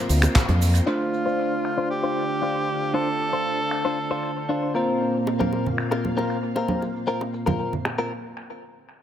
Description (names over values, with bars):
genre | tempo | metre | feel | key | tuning
nu-disco, nu disco | 116 BPM | 4/4 | straight | D minor | A4 = 440 Hz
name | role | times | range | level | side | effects
breathy tenor saxophone | melody | 0.0-4.8 s | C4 to A4 | -28 LUFS | right 1 dB | vintage 12-bit sampler grit, analog delay
bell-like tine electric piano | accompaniment | 0.0-8.1 s | A3 to C5 | -29 LUFS | equal | sidechain pumping, tape echo
string machine, full ensemble | sustained chords | 0.0-8.1 s | Bb2 to C6 | -30 LUFS | equal | ensemble chorus, sidechain pumping
fingered electric bass with an envelope filter | bass | 0.1-0.8 s | D2 to F2 | -18 LUFS | equal | tube saturation, sidechain pumping
tight funk drum kit | drums | 0.1-8.1 s | finger snaps, handclaps, hi-hat, shaker | -30 LUFS | equal | low-pass filter on hats, low-pass filter on perc, low-pass filter on snare, low-pass filter on room, tape echo
bongos and congas | percussion | 0.2-0.6, 5.3-8.0 s | none | -29 LUFS | right 2 dB | none
kick drum | drums | 0.4-0.5 s | none | -22 LUFS | equal | none
direct-recorded clean electric guitar | riff | 0.9-8.1 s | C4 to C5 | -28 LUFS | left 3 dB | lush chorus, low-pass filter, tape echo
room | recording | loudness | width
light reverb, studio ambience | echo-heavy mix | -21 LUFS | side -10 dB against mid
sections
0.9-9.0 A section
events
filter sweep on clean electric guitar 0.9-9.0; break 8.1-9.0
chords
0.0 Bbsus2; 0.9 Dm7; 4.8 Bbsus2